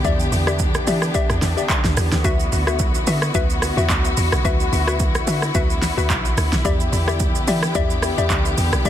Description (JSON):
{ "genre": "amapiano", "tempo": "109 BPM", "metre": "4/4", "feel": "swing 55% on 16ths", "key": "E minor", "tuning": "A4 = 441 Hz", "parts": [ { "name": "warm symphonic string section", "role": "sustained chords", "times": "0.0-8.9 s", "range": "D3 to G4", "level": "-24 LUFS", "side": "left 1 dB", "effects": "none" }, { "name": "hollow square pluck", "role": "stabs", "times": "0.0-8.9 s", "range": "F#4 to E5", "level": "-25 LUFS", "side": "left 6 dB", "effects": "chorus, tape echo" }, { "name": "deep log drum bass", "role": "bass", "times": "0.0-8.9 s", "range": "B1 to E3", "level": "-21 LUFS", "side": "right 1 dB", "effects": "none" }, { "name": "deep house drum kit", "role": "drums", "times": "0.0-8.9 s", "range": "handclaps, hi-hat, kick drum, rim click, shaker, snare drum", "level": "-21 LUFS", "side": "right 1 dB", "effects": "overdrive" } ], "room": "little or no reverb", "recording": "dense, heavily limited modern master", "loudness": "-17 LUFS", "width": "side -10 dB against mid", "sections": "0.0-8.9 A section", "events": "none", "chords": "0.0 Em7; 2.2 D69; 6.7 Em7" }